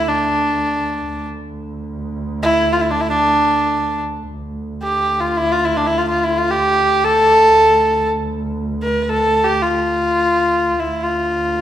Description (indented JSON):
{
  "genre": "Persian modal ensemble",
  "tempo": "free time",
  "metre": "none",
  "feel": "none",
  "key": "D avaz esfahan",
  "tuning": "A4 = 440 Hz",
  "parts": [
    { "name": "clear kamancheh", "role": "melody", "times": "0.0-11.6 s", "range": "D4 to B4-44c", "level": "-14 LUFS", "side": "equal", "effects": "none" },
    { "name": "warm double bass", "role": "drone", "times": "0.0-11.6 s", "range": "D2", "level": "-25 LUFS", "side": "right 2 dB", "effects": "none" }
  ],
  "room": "wet recital hall reverb, RT60 1.3 s",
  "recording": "minimal, uncompressed stereo recording",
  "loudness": "-14 LUFS",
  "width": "side -11 dB against mid",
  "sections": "0.0-4.3 A section; 4.3-11.6 A section",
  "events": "none",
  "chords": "none",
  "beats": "free time"
}